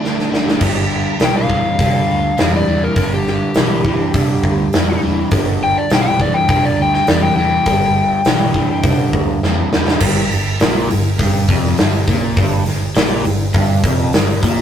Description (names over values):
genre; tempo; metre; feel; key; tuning
blues rock power trio and southern rock; 102 BPM; 4/4; straight; unclear; A4 = 440 Hz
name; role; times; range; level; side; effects
overdriven slide guitar; melody; 0.0-9.1 s; G4 to G5; -18 LUFS; left 3 dB; none
crunchy overdriven guitar; riff; 0.0-14.6 s; F2 to D4; -18 LUFS; equal; phaser
big rock drum kit; drums; 0.0-14.6 s; crash cymbal, hi-hat, kick drum, snare drum; -16 LUFS; equal; none
vintage muted picked electric bass; bass; 0.6-14.6 s; F1 to F2; -21 LUFS; equal; none
room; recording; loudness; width
moderate booth ambience, RT60 0.2 s; rough rehearsal-room recording; -13 LUFS; side -9 dB against mid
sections
0.6-10.0 A section; 10.0-14.6 B section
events
break 0.0-0.6; drum fill 0.0-0.6, 9.4-10.0; electric slide guitar solo 0.6-10.0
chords
0.0 D5; 0.6 G; 10.0 Fsus24